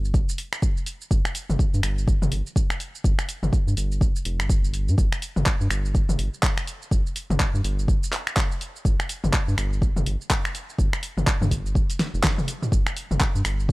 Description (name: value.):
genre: afro house.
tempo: 124 BPM.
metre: 4/4.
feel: swing 60% on 16ths.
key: unclear.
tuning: A4 = 440 Hz.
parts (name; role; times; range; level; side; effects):
round analog bass; bass; 0.0-13.7 s; F1 to G2; -25 LUFS; equal; sidechain pumping.
deep house drum kit; drums; 0.0-13.7 s; finger snaps, handclaps, hi-hat, shaker, snare drum, toms; -26 LUFS; equal; none.
electronic kick drum; drums; 0.1-13.7 s; none; -22 LUFS; equal; none.
room: little or no reverb.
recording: dry, gritty hardware recording.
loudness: -21 LUFS.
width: side -21 dB against mid.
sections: 0.0-13.7 A section.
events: drum fill 12.0-12.7.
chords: none.